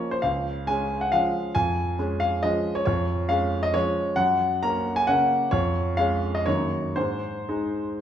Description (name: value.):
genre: classical, romantic triple-time dance for piano with dotted rhythms.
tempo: 110-148 BPM.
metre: 3/4.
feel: rubato.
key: Db major.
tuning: A4 = 441 Hz.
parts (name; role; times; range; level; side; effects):
warm concert grand piano; solo; 0.0-8.0 s; Db2 to Bb5; -22 LUFS; equal; none.
room: wet recital hall reverb, RT60 1.3 s.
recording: minimal, uncompressed stereo recording.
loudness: -22 LUFS.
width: side -9 dB against mid.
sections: 0.0-8.0 A section.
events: none.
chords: 0.2 Db; 1.6 Db/F; 4.2 Gb; 5.5 Db/F; 6.5 Ebm/Gb; 7.0 Ab.